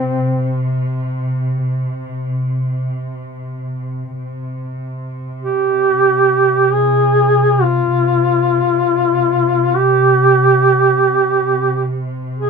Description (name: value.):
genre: caucasian folk, Caucasian lament.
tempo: free time.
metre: none.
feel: none.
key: unclear.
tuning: A4 = 436 Hz.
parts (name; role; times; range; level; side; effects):
mellow duduk; melody; 0.0-12.5 s; C4 to Ab4; -13 LUFS; right 1 dB; none.
muted studio cello section; drone; 0.0-12.5 s; C3; -19 LUFS; left 1 dB; none.
room: wet booth ambience, RT60 0.2 s.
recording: heard from further back in the room.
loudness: -13 LUFS.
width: side -5 dB against mid.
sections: 0.0-4.2 A section; 4.2-12.5 A section.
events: none.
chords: none.